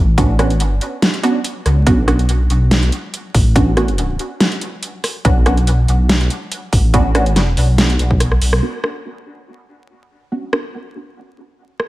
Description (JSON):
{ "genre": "deep dubstep", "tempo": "142 BPM", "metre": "4/4", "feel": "swing 54% on 16ths, half-time", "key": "B minor", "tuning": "A4 = 439 Hz", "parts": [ { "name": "dark detuned saw bass", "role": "bass", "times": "0.0-8.6 s", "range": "A1 to C#2", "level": "-14 LUFS", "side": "equal", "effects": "none" }, { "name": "filtered dub chord stab", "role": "stabs", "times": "0.2-10.7 s", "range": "B3 to F#4", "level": "-21 LUFS", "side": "right 2 dB", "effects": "phaser, analog chorus, dub echo" }, { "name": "dubstep drum kit", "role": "drums", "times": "0.2-11.9 s", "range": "hi-hat, rim click, snare drum", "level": "-18 LUFS", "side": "equal", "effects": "studio reverb" }, { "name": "electronic kick drum", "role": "drums", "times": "0.2-8.2 s", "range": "none", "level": "-15 LUFS", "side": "equal", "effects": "studio reverb" } ], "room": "light reverb, digital ambience", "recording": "vinyl crackle", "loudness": "-13 LUFS", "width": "side -17 dB against mid", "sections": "0.0-8.6 A section; 8.6-11.9 B section", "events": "drum fill 8.2-8.6; band accent 8.5", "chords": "0.0 Bmadd9", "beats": "| 0.18 0.60 1.02 1.45 | 1.87 2.29 2.71 3.13 | 3.56 3.98 4.40 4.83 | 5.25 5.67 6.09 6.51 | 6.94 7.36 7.78 8.21 | 8.63 9.05 9.47 9.89 | 10.32 10.74 11.16 11.59" }